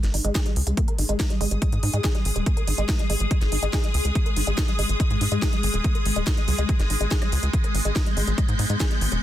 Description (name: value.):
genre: psychedelic trance.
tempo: 142 BPM.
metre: 4/4.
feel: straight.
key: G# harmonic minor.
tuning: A4 = 440 Hz.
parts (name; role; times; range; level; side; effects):
swarming drone; sustained chords; 0.1-9.2 s; G#3 to G#4; -31 LUFS; left 2 dB; built-in reverb, sidechain pumping.
tight sequencer bass; bass; 0.0-9.2 s; D#1 to G#2; -24 LUFS; equal; none.
techno drum kit; drums; 0.0-9.2 s; hi-hat, rim click, snare drum; -30 LUFS; equal; overdrive.
woody wave-folded pluck; riff; 0.1-9.2 s; G3 to A#4; -31 LUFS; moving between left 5 dB and right 3 dB; chorus, auto-pan, sidechain pumping, ping-pong delay.
electronic kick drum; drums; 0.4-8.9 s; none; -23 LUFS; equal; overdrive.
dark chamber string section; texture; 1.4-9.2 s; D#6 to G6; -34 LUFS; left 2 dB; sidechain pumping.
room: digital ambience.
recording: dense, heavily limited modern master.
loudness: -20 LUFS.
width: side -12 dB against mid.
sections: 0.0-9.2 A section.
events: filter sweep on synth arpeggio sound 0.0-9.2.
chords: 0.0 G#5.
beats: 0.35 0.77 1.20 | 1.62 2.04 2.46 2.89 | 3.31 3.73 4.15 4.58 | 5.00 5.42 5.84 6.27 | 6.69 7.11 7.53 7.96 | 8.38 8.80 9.22.